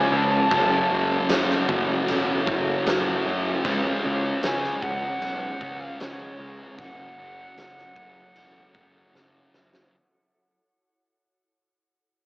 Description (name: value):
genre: rock, shoegaze and dream pop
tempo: 76 BPM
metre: 4/4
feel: straight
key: F# minor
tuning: A4 = 439 Hz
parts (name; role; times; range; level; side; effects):
- mellow concert flute; melody; 0.0-9.5 s; C#5 to A5; -28 LUFS; equal; cassette tape, tape echo
- ethereal airy pad; sustained chords; 0.1-9.9 s; G#3 to G#5; -33 LUFS; equal; none
- overdriven semi-hollow guitar; riff; 0.0-9.9 s; F#2 to C#4; -32 LUFS; right 2 dB; reverse reverb, cassette tape
- thick fuzz guitar; riff; 0.0-9.9 s; F#2 to C#4; -27 LUFS; left 1 dB; distortion, wide subtle chorus, cassette tape
- fuzz picked electric bass; bass; 0.1-9.8 s; E1 to C#2; -30 LUFS; equal; overdrive
- huge arena drum kit; drums; 0.5-9.9 s; crash cymbal, kick drum, snare drum; -29 LUFS; equal; cassette tape
room: light reverb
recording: home recording on cassette, AM radio sound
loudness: -21 LUFS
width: side -26 dB against mid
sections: 0.0-9.9 A section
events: fade-out 0.0-9.9; drum fill 9.1-9.9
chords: 0.0 C#; 0.5 F#m7; 3.7 C#; 6.8 F#m7